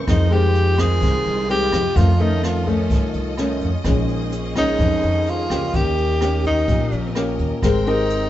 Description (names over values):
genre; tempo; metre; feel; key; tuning
bossa nova; 127 BPM; 4/4; straight; unclear; A4 = 440 Hz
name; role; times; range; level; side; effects
nylon-string guitar; accompaniment; 0.0-8.3 s; F2 to Bb4; -23 LUFS; left 2 dB; none
warm symphonic string section; sustained chords; 0.0-8.3 s; Ab3 to G5; -32 LUFS; left 1 dB; none
breathy tenor saxophone; melody; 0.1-8.3 s; C4 to Ab4; -22 LUFS; equal; none
upright bass; bass; 0.1-8.3 s; Ab1 to F2; -21 LUFS; equal; none
jazz brush drum kit; drums; 0.1-8.2 s; hi-hat, kick drum, rim click; -24 LUFS; equal; none
room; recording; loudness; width
moderate large studio reverb, RT60 0.9 s; band playing live in one room, nothing above 7.7 kHz; -17 LUFS; side -13 dB against mid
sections
0.0-8.3 A section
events
none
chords
0.1 Fm7; 2.0 F7b13; 3.9 Bbm11; 5.7 Eb7; 7.6 Abmaj9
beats
| 0.08 0.55 1.02 1.49 | 1.96 2.44 2.91 3.38 | 3.85 4.32 4.79 5.26 | 5.74 6.21 6.68 7.15 | 7.62 8.10